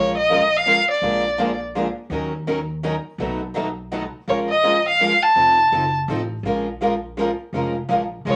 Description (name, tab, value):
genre	acoustic string swing (jazz manouche)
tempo	166 BPM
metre	3/4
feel	swing 60% on 8ths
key	Bb minor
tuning	A4 = 441 Hz
part	warm violin	melody	0.0-1.6, 4.3-5.9, 8.3-8.4 s	Db5 to A5	-19 LUFS	equal	none
part	picked steel-string acoustic guitar	accompaniment	0.0-8.4 s	B2 to Bb4	-27 LUFS	equal	none
part	picked steel-string acoustic guitar	accompaniment	0.0-8.4 s	B2 to Bb4	-29 LUFS	equal	none
part	upright bass	bass	0.0-8.4 s	F1 to Eb2	-34 LUFS	equal	none
room	moderate studio reverb, RT60 0.5 s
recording	none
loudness	-20 LUFS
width	mono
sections	0.0-8.4 A section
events	none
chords	0.0 Bbm7; 1.0 Bb7; 2.1 Ebm7; 3.2 B7; 4.3 Bbm7; 5.4 F7; 6.5 Bbm7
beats	0.30 0.66 | 1.02 1.39 1.75 | 2.11 2.47 2.83 | 3.20 3.56 3.92 | 4.28 4.64 5.01 | 5.37 5.73 6.09 | 6.45 6.81 7.17 | 7.54 7.90 8.26